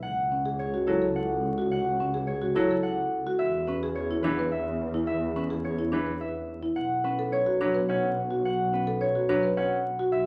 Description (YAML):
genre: classical, minimalist pattern music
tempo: 107 BPM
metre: 3/4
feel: straight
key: unclear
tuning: A4 = 439 Hz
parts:
  - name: concert harp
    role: melody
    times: 0.0-10.3 s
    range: A4 to F#5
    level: -33 LUFS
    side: equal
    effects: none
  - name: warm symphonic double bass section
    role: bass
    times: 0.0-10.3 s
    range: B1 to E2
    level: -36 LUFS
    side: equal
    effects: none
  - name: marimba with medium mallets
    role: arpeggios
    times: 0.3-10.2 s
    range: C#4 to C#5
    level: -31 LUFS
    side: equal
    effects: none
  - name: bright grand piano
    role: accompaniment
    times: 0.9-9.8 s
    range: E3 to C#4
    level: -31 LUFS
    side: equal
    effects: none
room: wet large studio reverb, RT60 0.9 s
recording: vinyl crackle, nothing above 10.7 kHz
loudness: -27 LUFS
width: mono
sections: 0.0-10.3 A section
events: none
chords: 0.0 A/C#; 3.4 E5; 6.8 B5